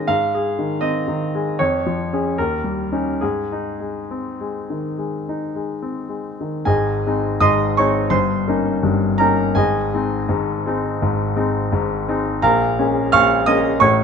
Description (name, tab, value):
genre	classical, romantic character piece for solo piano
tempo	68-87 BPM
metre	4/4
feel	rubato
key	Ab major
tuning	A4 = 435 Hz
part	clear concert grand piano	solo	0.0-14.0 s	G1 to F6	-17 LUFS	equal	none
room	moderate studio reverb, RT60 1.0 s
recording	nothing above 10.6 kHz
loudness	-17 LUFS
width	side -6 dB against mid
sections	0.0-6.7 A section; 6.7-14.0 B section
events	none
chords	0.1 Ab; 1.6 Db/F; 2.4 Eb7; 3.2 Ab; 8.1 Eb7/G; 9.6 Ab; 12.4 Bbm7